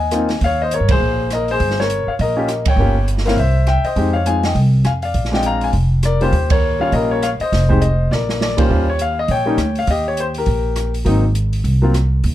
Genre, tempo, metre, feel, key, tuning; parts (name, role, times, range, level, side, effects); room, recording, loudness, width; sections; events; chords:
jazz piano trio; 203 BPM; 4/4; swing 60% on 8ths; Eb mixolydian; A4 = 440 Hz
warm baby grand piano; melody; 0.0-11.9 s; Eb2 to Bb5; -18 LUFS; left 2 dB; plate reverb
upright bass; bass; 0.0-12.3 s; F1 to G2; -18 LUFS; equal
open jazz drum kit; drums; 0.1-12.3 s; hi-hat, kick drum, ride cymbal, rim click, snare drum; -22 LUFS; right 2 dB
little or no reverb; dark, warm production; -14 LUFS; side -13 dB against mid
0.0-8.7 A section; 8.7-12.3 A section
band accent 0.9, 2.6, 6.5, 8.6; drum fill 8.1-8.7
0.4 Eb7; 2.8 Gm7b5; 3.4 C; 4.0 Fm7; 5.2 Bb7; 6.3 Eb7; 7.5 Fm7; 8.1 Bb; 8.7 Eb7; 11.1 Ab7